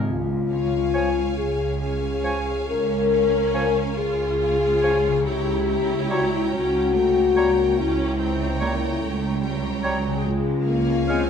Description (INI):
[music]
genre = classical, slow romantic movement for symphony orchestra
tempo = 47 BPM (dotted quarters)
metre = 12/8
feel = rubato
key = Db major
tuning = A4 = 439 Hz
[part]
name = clear oboe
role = second line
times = 0.0-11.2 s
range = Db5 to F5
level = -32 LUFS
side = right 2 dB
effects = none
[part]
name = concert harp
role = arpeggios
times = 0.0-11.3 s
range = Db3 to Db5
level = -33 LUFS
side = left 4 dB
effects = none
[part]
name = dark French horn section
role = sustained chords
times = 0.1-11.3 s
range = Fb4 to Bb4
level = -22 LUFS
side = left 5 dB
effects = none
[part]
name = dark studio double bass section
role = bass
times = 0.1-11.3 s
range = Db2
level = -29 LUFS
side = right 4 dB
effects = none
[part]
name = warm symphonic cello section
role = bass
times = 0.1-11.3 s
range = Db2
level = -29 LUFS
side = right 5 dB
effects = none
[part]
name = warm studio violin section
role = melody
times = 0.5-11.3 s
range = Ab5 to Bb5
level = -40 LUFS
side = left 2 dB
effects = none
[part]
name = rich studio violin section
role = second line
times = 0.5-11.3 s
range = Db5 to G5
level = -34 LUFS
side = equal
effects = none
[part]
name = bright clarinet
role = second line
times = 0.9-11.2 s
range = Db5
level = -35 LUFS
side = right 1 dB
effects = none
[part]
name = silver concert flute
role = second line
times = 0.9-11.3 s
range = Ab5 to Bb5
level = -35 LUFS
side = right 1 dB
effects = none
[part]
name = clear bassoon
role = accompaniment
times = 0.9-11.2 s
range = F3 to Ab3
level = -35 LUFS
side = right 3 dB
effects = none
[part]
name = warm studio viola section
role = accompaniment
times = 2.7-11.3 s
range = Gb3 to F4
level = -30 LUFS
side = right 1 dB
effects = none
[part]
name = timpani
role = percussion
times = 10.2-11.3 s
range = Db3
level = -31 LUFS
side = right 1 dB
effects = none
[sound]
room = wet recital hall reverb, RT60 1.4 s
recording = none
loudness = -20 LUFS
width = side -7 dB against mid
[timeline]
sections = 0.1-11.3 A section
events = none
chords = 0.1 Db; 5.3 Dbdim7; 10.3 Db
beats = | 0.06 1.38 2.68 3.97 | 5.25 6.53 7.78 9.02 | 10.25